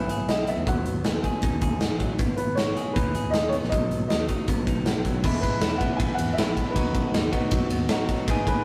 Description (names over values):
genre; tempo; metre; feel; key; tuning
indie rock; 158 BPM; 4/4; straight; E major; A4 = 441 Hz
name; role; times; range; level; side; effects
warm upright piano; melody; 0.0-8.6 s; B4 to G#5; -32 LUFS; equal; none
crunchy overdriven guitar; riff; 0.0-8.6 s; F#3 to G#4; -34 LUFS; equal; none
picked electric bass; bass; 0.0-8.4 s; G#1 to F#2; -35 LUFS; equal; none
big rock drum kit; drums; 0.1-8.6 s; crash cymbal, hi-hat, kick drum, ride cymbal, snare drum; -27 LUFS; equal; none
biting overdriven guitar; riff; 5.2-8.6 s; E2 to G#4; -32 LUFS; equal; none
room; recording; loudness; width
moderate stone room reverb, RT60 1.3 s; rough rehearsal-room recording; -25 LUFS; mono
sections
0.0-5.2 A section; 5.2-8.6 B section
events
none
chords
0.0 E; 0.7 B6/D#; 2.2 G#m; 3.7 B; 5.2 E; 6.8 B/D#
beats
0.29 | 0.67 1.05 1.43 1.81 | 2.19 2.57 2.96 3.34 | 3.72 4.10 4.48 4.86 | 5.24 5.62 6.00 6.38 | 6.76 7.14 7.51 7.89 | 8.27